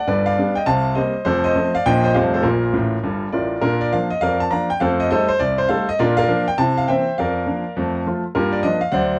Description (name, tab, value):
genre	jazz, stride piano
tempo	204 BPM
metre	4/4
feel	swing 64% on 8ths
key	Bb major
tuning	A4 = 443 Hz
part	clear grand piano	solo	0.0-9.2 s	F1 to Bb5	-19 LUFS	equal	none
room	moderate studio ambience, RT60 0.5 s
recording	dark, warm production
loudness	-19 LUFS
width	mono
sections	0.0-3.6 A section; 3.6-9.2 A section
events	grand piano fill 2.7-3.6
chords	0.1 G7; 0.7 Cm7; 1.3 F7; 1.9 Bb; 2.1 F9; 2.4 Bb; 4.8 F9; 6.0 Bb; 6.6 C7; 7.2 Bb/F; 7.7 F; 8.3 Gm7